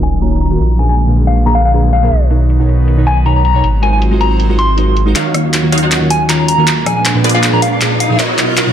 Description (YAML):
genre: future bass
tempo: 158 BPM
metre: 4/4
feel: swing 54% on 16ths, half-time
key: Eb minor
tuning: A4 = 441 Hz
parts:
  - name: soft struck synth lead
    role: melody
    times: 0.0-8.2 s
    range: F5 to C6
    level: -17 LUFS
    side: left 2 dB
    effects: chorus, tape echo
  - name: glassy digital keys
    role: accompaniment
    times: 0.0-8.7 s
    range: Bb2 to Db5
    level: -16 LUFS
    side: right 2 dB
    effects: chorus
  - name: airy breathy pad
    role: sustained chords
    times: 0.0-8.7 s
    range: Eb2 to A#4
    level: -21 LUFS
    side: equal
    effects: chorus
  - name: saturated sub bass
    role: bass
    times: 0.0-5.1 s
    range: Eb1 to B1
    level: -12 LUFS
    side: equal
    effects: none
  - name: big-room dance drum kit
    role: drums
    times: 0.0-8.7 s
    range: handclaps, hi-hat, rim click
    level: -16 LUFS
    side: left 1 dB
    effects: low-pass filter on hats, small room ambience, soft clipping on snare, low-pass filter on snare, low-pass filter on cymbals
  - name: impact and riser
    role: sound effects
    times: 0.0-0.6, 6.4-8.7 s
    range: none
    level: -20 LUFS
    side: equal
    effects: none
  - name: supersaw stab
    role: riff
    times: 5.2-8.7 s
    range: Eb3 to Gb5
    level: -17 LUFS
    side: equal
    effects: wide subtle chorus, low-pass filter, tape echo
room: light reverb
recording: dense, heavily limited modern master, low-pass filter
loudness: -10 LUFS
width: side -9 dB against mid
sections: 0.0-5.2 A section; 5.2-8.7 B section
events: impact 0.0-0.6; filter sweep 0.0-5.2; build-up 5.2-8.7; drum fill 5.2-8.7; filter sweep on analog synth pad 5.2-8.7; riser 6.4-8.7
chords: 0.0 Ebm7; 0.6 Bb7b9; 2.1 Bmaj9; 3.6 Ab13; 5.2 Ebm7; 6.7 Bb7b9; 8.2 Bmaj9